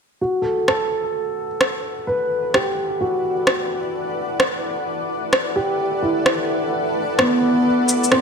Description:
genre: future garage.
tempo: 129 BPM.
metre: 4/4.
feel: swing 65% on 16ths.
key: E minor.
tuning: A4 = 440 Hz.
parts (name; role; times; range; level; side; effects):
dark upright piano; accompaniment; 0.2-8.2 s; B3 to B4; -21 LUFS; equal; vintage 12-bit sampler grit, ping-pong delay.
granular cloud pad; sustained chords; 1.9-8.2 s; E3 to F#5; -24 LUFS; left 1 dB; built-in reverb.
electronic rim click and shaker; drums; 0.7-8.2 s; none; -19 LUFS; equal; overdrive.
room: wet lush hall reverb, RT60 1.6 s, digital ambience.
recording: none.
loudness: -18 LUFS.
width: side -6 dB against mid.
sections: 0.2-8.2 A section.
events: fade-in on ambient pad 0.2-8.2.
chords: 0.2 Em7; 7.7 C/E.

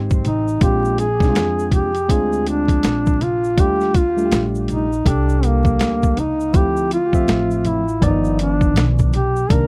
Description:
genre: hip hop, jazz-hop.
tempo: 81 BPM.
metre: 4/4.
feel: swing 61% on 16ths.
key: unclear.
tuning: A4 = 439 Hz.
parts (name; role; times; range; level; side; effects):
tine electric piano; accompaniment; 0.0-9.7 s; Eb3 to E5; -25 LUFS; equal; none.
upright bass; bass; 0.0-9.7 s; G1 to F2; -24 LUFS; equal; none.
boom bap sampler-style drum kit; drums; 0.1-9.7 s; hi-hat, kick drum, snare drum; -20 LUFS; equal; none.
congas and tube shaker; percussion; 0.1-9.7 s; none; -34 LUFS; equal; none.
dark duduk; melody; 0.3-9.7 s; Bb3 to Bb4; -22 LUFS; equal; tape echo.
room: little or no reverb.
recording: dry, close 1970s-style studio recording, vinyl crackle.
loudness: -18 LUFS.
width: mono.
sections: 0.0-9.7 A section.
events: none.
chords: 0.0 Fm7 (rootless); 0.6 Bb7; 3.6 Ebmaj9#11; 6.5 Dm7; 8.0 G7b13.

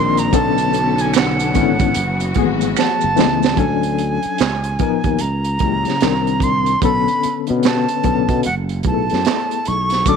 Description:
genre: R&B, neo-soul.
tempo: 74 BPM.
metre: 4/4.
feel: swing 63% on 16ths.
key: F# minor.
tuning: A4 = 440 Hz.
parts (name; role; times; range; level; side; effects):
breathy bright jazz flute; melody; 0.0-10.2 s; F#5 to D6; -20 LUFS; right 3 dB; slapback echo.
barky reed electric piano; accompaniment; 0.0-10.2 s; D3 to B4; -20 LUFS; left 14 dB; overdrive, fast tremolo.
dark studio string section; sustained chords; 0.0-3.6 s; D3 to Bb4; -26 LUFS; right 1 dB; none.
sustaining fretless electric bass; bass; 0.0-10.2 s; F#1 to C#3; -21 LUFS; right 1 dB; lush chorus.
crunchy breakbeat drum kit; drums; 0.2-10.2 s; handclaps, hi-hat, kick drum, snare drum; -20 LUFS; right 6 dB; none.
maracas and finger snaps; percussion; 0.2-3.6, 10.1-10.2 s; none; -29 LUFS; right 17 dB; none.
room: light reverb, small room ambience.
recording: 1960s-style stereo with parts hard left and right.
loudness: -15 LUFS.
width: side -6 dB against mid.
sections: 0.0-3.6 A section; 3.6-10.2 B section.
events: drum fill 2.8-3.6.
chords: 0.3 Bm9; 2.0 F#m11; 3.6 Dmaj7; 4.4 C#13; 5.2 F#7b9/C#; 6.0 Cm9; 6.8 Bm9; 8.4 F#m11.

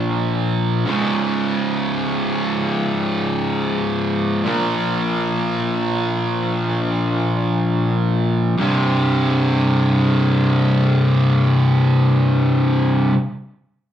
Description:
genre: metal.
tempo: free time.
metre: none.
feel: none.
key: unclear.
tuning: A4 = 439 Hz.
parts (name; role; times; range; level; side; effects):
fuzz guitar; solo; 0.0-13.2 s; C2 to Bb3; -16 LUFS; equal; distortion.
room: moderate club reverb, RT60 0.5 s.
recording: live gig heard through the venue's PA, club reverb.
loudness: -16 LUFS.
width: side -10 dB against mid.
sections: 0.0-8.6 A section; 8.6-13.2 B section.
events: slowing down 0.9-8.6.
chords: 0.0 Bb5; 0.9 Db5; 4.5 Bb5; 8.6 C5.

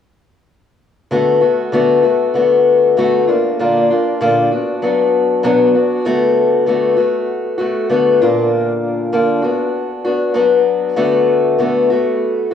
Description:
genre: rock.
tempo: 97 BPM.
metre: 4/4.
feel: straight.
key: D major.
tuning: A4 = 438 Hz.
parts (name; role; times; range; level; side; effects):
picked old ladder-braced acoustic guitar; solo; 1.1-12.5 s; Bb2 to F#4; -12 LUFS; left 2 dB; cassette tape, analog delay.
room: moderate spring reverb, RT60 1.9 s, small room ambience.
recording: home recording on cassette, studio ambience.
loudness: -12 LUFS.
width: side -8 dB against mid.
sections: 1.1-6.1 A section; 6.1-12.5 B section.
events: none.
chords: 1.1 D6; 3.3 Bb; 4.5 Bm; 6.1 D6; 8.2 Bb; 9.4 Bm; 11.0 D6.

